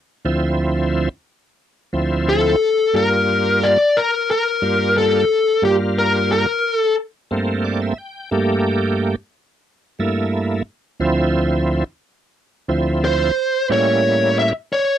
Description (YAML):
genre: blues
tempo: 89 BPM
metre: 4/4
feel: straight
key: D minor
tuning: A4 = 439 Hz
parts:
  - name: bright tonewheel organ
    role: accompaniment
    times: 0.2-14.5 s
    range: D2 to G5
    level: -18 LUFS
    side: right 2 dB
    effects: slow rotary speaker, overdrive, chorus vibrato
  - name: smooth overdriven lead guitar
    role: melody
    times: 2.3-6.9, 13.0-15.0 s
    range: G4 to E5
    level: -16 LUFS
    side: left 2 dB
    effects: none
room: light reverb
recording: dry, close 1970s-style studio recording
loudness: -16 LUFS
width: side -10 dB against mid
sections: 0.0-15.0 A section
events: tonewheel organ fill 7.3-8.3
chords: 0.0 Dm7; 2.9 Gm7; 11.0 Dm7; 13.7 A7b9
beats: | 0.26 0.93 1.60 2.27 | 2.95 3.62 4.29 4.96 | 5.64 6.31 6.98 7.66 | 8.33 9.00 9.67 10.34 | 11.01 11.68 12.36 13.03 | 13.70 14.37